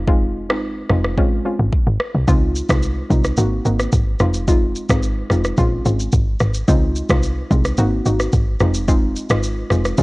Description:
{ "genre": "afrobeats", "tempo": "109 BPM", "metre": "4/4", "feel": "straight", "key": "unclear", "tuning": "A4 = 440 Hz", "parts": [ { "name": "woody log drum bass", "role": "bass", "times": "0.0-10.0 s", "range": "F1 to Db2", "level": "-19 LUFS", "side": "equal", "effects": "none" }, { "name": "soft round pluck", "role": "accompaniment", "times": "0.1-10.0 s", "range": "Ab3 to Gb4", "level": "-22 LUFS", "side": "equal", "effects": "chorus" }, { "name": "afro-pop drum kit", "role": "drums", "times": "0.1-10.0 s", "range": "kick drum, rim click, shaker", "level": "-19 LUFS", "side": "equal", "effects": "none" } ], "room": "little or no reverb", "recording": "worn, warbling old tape, cassette tape, warbly pitch drift", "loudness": "-15 LUFS", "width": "side -22 dB against mid", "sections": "0.0-10.0 A section", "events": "break 0.0-2.3", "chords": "0.0 Fm7; 1.2 Bbm9; 2.3 Dbmaj9; 3.4 Ab7; 4.2 Fm7; 5.6 Bbm9; 6.7 Dbmaj9; 7.8 Ab7; 8.6 Fm7", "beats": "| 0.07 0.63 1.18 1.73 | 2.28 2.83 3.38 3.93 | 4.48 5.03 5.58 6.13 | 6.68 7.23 7.78 8.33 | 8.88 9.43 9.98" }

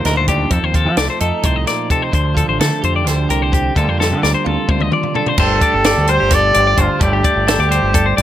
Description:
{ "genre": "math rock and midwest emo", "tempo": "258 BPM (eighths)", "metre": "7/8", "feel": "straight", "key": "unclear", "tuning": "A4 = 440 Hz", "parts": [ { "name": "twelve-string electric guitar", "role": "accompaniment", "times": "0.0-8.2 s", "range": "Eb2 to G4", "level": "-21 LUFS", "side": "right 6 dB", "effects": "none" }, { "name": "clean electric guitar", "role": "arpeggios", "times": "0.0-8.2 s", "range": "G4 to Eb5", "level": "-19 LUFS", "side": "left 7 dB", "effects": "analog delay" }, { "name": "compact cocktail drum kit", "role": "drums", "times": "0.0-8.2 s", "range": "crash cymbal, hi-hat, kick drum, snare drum, toms", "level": "-18 LUFS", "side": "equal", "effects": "none" }, { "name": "growling fingered electric bass", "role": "bass", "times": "0.1-8.2 s", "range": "G1 to F3", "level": "-18 LUFS", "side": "equal", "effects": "overdrive" }, { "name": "clear trumpet", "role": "melody", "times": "5.4-8.2 s", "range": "F4 to D5", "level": "-16 LUFS", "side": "equal", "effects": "none" } ], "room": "light reverb", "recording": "none", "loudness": "-13 LUFS", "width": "side -12 dB against mid", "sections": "0.0-5.4 A section; 5.4-8.2 B section", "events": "drum fill 4.0-5.4", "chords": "0.0 Ebmaj7; 0.5 F7; 2.1 Dm7; 3.8 Gm9/D; 5.4 Gsus2", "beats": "0.05 0.28 | 0.51 0.74 0.97 1.21 1.44 1.67 1.90 | 2.13 2.37 2.60 2.83 3.06 3.30 3.53 | 3.76 3.99 4.23 4.46 4.69 4.92 5.16 | 5.39 5.62 5.85 6.08 6.32 6.55 6.78 | 7.01 7.24 7.48 7.71 7.94 8.17" }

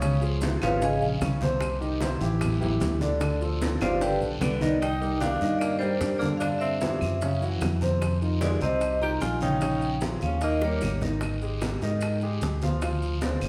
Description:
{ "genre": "Afro-Cuban jazz", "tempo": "150 BPM", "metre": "4/4", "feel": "straight", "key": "C minor", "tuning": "A4 = 440 Hz", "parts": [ { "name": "warm concert grand piano", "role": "accompaniment", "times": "0.0-13.5 s", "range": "C3 to F5", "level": "-32 LUFS", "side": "equal", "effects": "none" }, { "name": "fingered electric bass", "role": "bass", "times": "0.0-13.5 s", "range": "G1 to Ab2", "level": "-31 LUFS", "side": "equal", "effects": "none" }, { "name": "bongos", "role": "percussion", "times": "0.0-13.5 s", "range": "none", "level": "-40 LUFS", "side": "equal", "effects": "none" }, { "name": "claves", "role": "percussion", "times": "0.0-13.5 s", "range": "none", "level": "-46 LUFS", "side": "equal", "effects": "none" }, { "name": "congas", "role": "percussion", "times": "0.0-13.5 s", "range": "none", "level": "-36 LUFS", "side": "equal", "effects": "none" }, { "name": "guiro", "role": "percussion", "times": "0.0-13.5 s", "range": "none", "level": "-46 LUFS", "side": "equal", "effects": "none" }, { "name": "maracas", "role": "percussion", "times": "0.0-13.5 s", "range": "none", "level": "-49 LUFS", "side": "equal", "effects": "none" }, { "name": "vibraphone with medium hard mallets", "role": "melody", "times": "0.6-1.0, 3.8-11.0 s", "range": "F4 to Bb5", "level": "-31 LUFS", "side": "equal", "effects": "none" }, { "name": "growling tenor saxophone", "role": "second line", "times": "4.4-11.0 s", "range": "G3 to G4", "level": "-35 LUFS", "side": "equal", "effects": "none" } ], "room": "wet large studio reverb, RT60 1.2 s", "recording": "heard from further back in the room", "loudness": "-26 LUFS", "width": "mono", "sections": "0.0-4.8 A section; 4.8-13.5 B section", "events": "vibraphone solo 0.0-4.8; drum fill 10.6-11.2", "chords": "0.0 Db; 1.6 Cm; 2.4 A5; 3.2 Dm7; 4.0 G; 4.8 Cm11; 6.4 G7sus4; 7.2 F#5; 8.0 F5; 9.6 Bbm7; 10.4 Eb7; 11.2 Ab5; 12.8 Dm7b5", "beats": "| 0.02 0.42 0.82 1.22 | 1.62 2.02 2.42 2.81 | 3.21 3.61 4.01 4.41 | 4.81 5.21 5.61 6.01 | 6.41 6.82 7.22 7.62 | 8.02 8.42 8.82 9.22 | 9.62 10.02 10.42 10.82 | 11.22 11.62 12.02 12.42 | 12.82 13.22" }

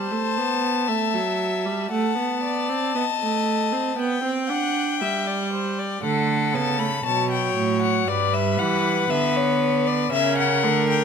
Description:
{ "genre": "classical, baroque-style fugue for string quartet", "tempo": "58 BPM", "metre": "4/4", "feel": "straight", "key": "G major", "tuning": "A4 = 442 Hz", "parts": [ { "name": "rich violin", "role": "melody", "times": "0.0-11.0 s", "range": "C#5 to B5", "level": "-24 LUFS", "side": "left 10 dB", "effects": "none" }, { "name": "warm violin", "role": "second line", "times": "0.0-11.0 s", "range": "A4 to G5", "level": "-28 LUFS", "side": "left 2 dB", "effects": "none" }, { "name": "warm viola", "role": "accompaniment", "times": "0.0-11.0 s", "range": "F#3 to D4", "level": "-25 LUFS", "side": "right 4 dB", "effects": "none" }, { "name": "rich cello", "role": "bass", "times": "6.0-11.0 s", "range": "G2 to E3", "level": "-25 LUFS", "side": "right 7 dB", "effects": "none" } ], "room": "moderate recital hall reverb, RT60 1.6 s", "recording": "close, detailed microphones", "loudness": "-20 LUFS", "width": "side -6 dB against mid", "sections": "0.0-11.0 A section", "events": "none", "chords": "0.0 Am7/G; 1.9 F#dim7/A; 4.0 G/B; 6.0 D; 8.1 Em7/G; 10.1 C#m6", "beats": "0.88 | 1.92 2.95 3.98 5.01 | 6.03 7.05 8.08 9.10 | 10.12" }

